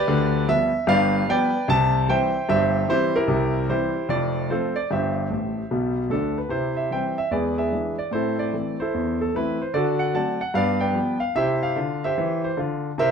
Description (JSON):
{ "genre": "jazz, stride piano", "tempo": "149 BPM", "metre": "4/4", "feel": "swing 65% on 8ths", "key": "C major", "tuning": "A4 = 440 Hz", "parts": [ { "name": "clear concert grand piano", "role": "solo", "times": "0.0-13.1 s", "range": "F1 to A5", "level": "-20 LUFS", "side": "equal", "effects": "none" } ], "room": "wet club reverb, RT60 0.5 s", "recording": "dark, warm production, lossy compression artefacts", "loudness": "-20 LUFS", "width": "side -6 dB against mid", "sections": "0.0-6.5 A section; 6.5-13.1 B section", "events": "grand piano fill 5.3-6.5", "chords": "0.1 G7/D; 1.7 C; 3.3 C7; 4.1 F; 4.9 C/G; 5.7 G; 6.5 C; 7.3 E7; 8.1 Am; 9.7 D7; 10.5 G7; 11.4 C" }